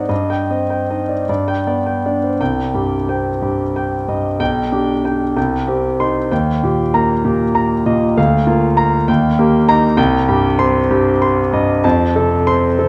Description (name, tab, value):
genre	classical, romantic character piece for solo piano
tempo	48-70 BPM (dotted quarters)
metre	6/8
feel	rubato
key	C minor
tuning	A4 = 436 Hz
part	warm concert grand piano	solo	0.0-12.9 s	B1 to C6	-16 LUFS	equal	none
room	wet recital hall reverb, RT60 1.4 s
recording	none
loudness	-16 LUFS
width	mono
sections	0.0-2.4 A section; 2.4-12.9 B section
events	none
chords	0.1 Cm/G; 1.3 G; 2.4 Cm; 4.4 G/B; 5.4 Cm; 6.3 Eb; 8.2 Bb/D; 9.1 Eb; 10.0 Cm; 11.8 F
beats	| 0.10 1.28 | 2.40 3.42 | 4.40 5.36 | 6.30 7.24 | 8.17 9.09 | 9.98 10.91 | 11.84 12.79